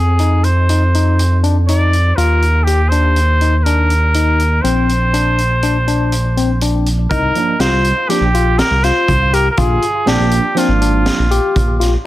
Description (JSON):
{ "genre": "progressive instrumental, band music in an uneven meter", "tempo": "121 BPM", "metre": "5/4", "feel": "straight", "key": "unclear", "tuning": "A4 = 440 Hz", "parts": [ { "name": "clear trumpet", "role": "melody", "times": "0.0-11.8 s", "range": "F4 to D5", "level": "-17 LUFS", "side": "right 1 dB", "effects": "none" }, { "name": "smooth synth bass", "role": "bass", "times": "0.0-12.0 s", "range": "Ab1 to F2", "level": "-14 LUFS", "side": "equal", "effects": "none" }, { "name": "barky tine electric piano", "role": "arpeggios", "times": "0.2-11.9 s", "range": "C4 to G4", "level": "-20 LUFS", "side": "left 5 dB", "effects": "overdrive, tape echo" }, { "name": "street-band drum kit", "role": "drums", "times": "0.2-11.9 s", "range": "hi-hat, kick drum, snare drum", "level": "-22 LUFS", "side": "equal", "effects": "none" }, { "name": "barky tine electric piano", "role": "accompaniment", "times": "7.3-11.3 s", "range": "F3 to D4", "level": "-20 LUFS", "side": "right 6 dB", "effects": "overdrive" } ], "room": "small room ambience", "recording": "dense, heavily limited modern master", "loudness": "-11 LUFS", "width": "side -15 dB against mid", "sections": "0.0-7.1 A section; 7.1-12.1 B section", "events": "none", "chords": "0.0 Fm7; 2.2 Ebmaj7(no3); 4.6 Bbadd9; 7.1 C9sus4; 9.6 Bb7" }